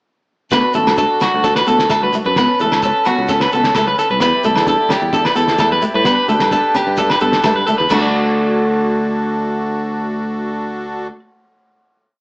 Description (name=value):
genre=highlife guitar band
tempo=130 BPM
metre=4/4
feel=straight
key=D major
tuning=A4 = 440 Hz
part: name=flamenco guitar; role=accompaniment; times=0.5-8.1 s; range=A3 to D4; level=-21 LUFS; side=equal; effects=none
part: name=accordion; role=sustained chords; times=0.5-11.1 s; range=C#4 to D5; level=-24 LUFS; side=equal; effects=light tremolo tuning
part: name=electric guitar at the edge of break-up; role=arpeggios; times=0.5-11.2 s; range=A3 to D5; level=-15 LUFS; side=equal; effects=spring reverb, slapback echo
part: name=modern bright fingered electric bass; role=bass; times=0.5-11.1 s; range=A1 to A2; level=-22 LUFS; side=equal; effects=none
part: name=cloth-damped thuddy drum kit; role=drums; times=0.5-8.0 s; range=crash cymbal, kick drum, snare drum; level=-23 LUFS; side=equal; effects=none
part: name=agogo bells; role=percussion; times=0.5-8.0 s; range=none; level=-23 LUFS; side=equal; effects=none
part: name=shekere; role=percussion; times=0.5-8.1 s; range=none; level=-32 LUFS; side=equal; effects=none
part: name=congas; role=percussion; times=0.8-8.1 s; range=none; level=-28 LUFS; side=equal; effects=none
room=moderate studio reverb, RT60 0.5 s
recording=small speaker sound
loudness=-13 LUFS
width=side -31 dB against mid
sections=0.5-7.9 groove; 7.9-11.6 final chord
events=drum fill 7.6-7.9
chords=0.5 D; 2.4 Aadd9/C#; 4.2 Em7; 6.1 G; 7.9 D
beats=| 0.53 0.99 1.45 1.91 | 2.37 2.83 3.29 3.75 | 4.22 4.68 5.14 5.60 | 6.06 6.53 6.99 7.45 | 7.91 8.37 8.83 9.29 | 9.75 10.21 10.67 11.13